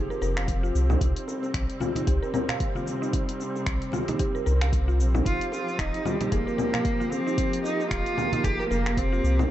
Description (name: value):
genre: organic downtempo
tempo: 113 BPM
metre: 4/4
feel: swing 57% on 16ths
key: unclear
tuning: A4 = 444 Hz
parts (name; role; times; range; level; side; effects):
- muted studio string section; sustained chords; 0.0-9.5 s; C3 to G4; -32 LUFS; equal; sidechain pumping
- mallet-like synth pluck; arpeggios; 0.0-9.5 s; Eb4 to F5; -33 LUFS; equal; chorus, tape echo
- warm sub bass; bass; 0.0-9.5 s; Eb1 to C2; -24 LUFS; equal; sidechain pumping
- deep house drum kit; drums; 0.1-9.5 s; cabasa, congas, finger snaps, hi-hat; -32 LUFS; left 2 dB; overdrive
- bongos and congas; percussion; 0.2-9.0 s; none; -37 LUFS; right 2 dB; none
- electronic kick drum; drums; 0.5-9.1 s; none; -29 LUFS; equal; overdrive
- rich cello; melody; 5.3-9.5 s; G3 to G4; -28 LUFS; equal; vintage 12-bit sampler grit, digital delay
room: moderate scoring stage reverb, RT60 2.0 s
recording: dark, warm production, nothing above 8.0 kHz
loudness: -23 LUFS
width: side -13 dB against mid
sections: 0.0-9.5 A section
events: none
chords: 0.0 F5; 1.0 C7(no3); 5.3 F7(no3)